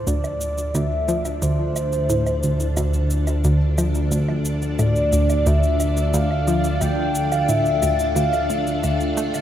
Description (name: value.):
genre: ambient, sequencer-driven space music.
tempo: 89 BPM.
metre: 4/4.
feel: straight.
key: D minor.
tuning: A4 = 439 Hz.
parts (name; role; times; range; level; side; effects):
mellow horn-like synth lead; melody; 0.0-8.8 s; C5 to G5; -24 LUFS; equal; chorus, analog delay.
string machine, full ensemble; sustained chords; 0.0-9.4 s; D4 to D5; -28 LUFS; left 1 dB; ensemble chorus.
fat analog bass; bass; 0.0-9.4 s; D2; -23 LUFS; equal; none.
analog pluck; riff; 0.1-9.4 s; D2 to A3; -23 LUFS; equal; chorus, analog delay.
cabasa and woodblock; percussion; 0.1-9.4 s; none; -33 LUFS; right 2 dB; analog delay.
room: wet cathedral reverb, RT60 5.6 s.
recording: in a vast, echoing space.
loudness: -18 LUFS.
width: side -10 dB against mid.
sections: 0.0-9.4 A section.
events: fade-in on string machine 0.0-9.4.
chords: 0.0 Dm.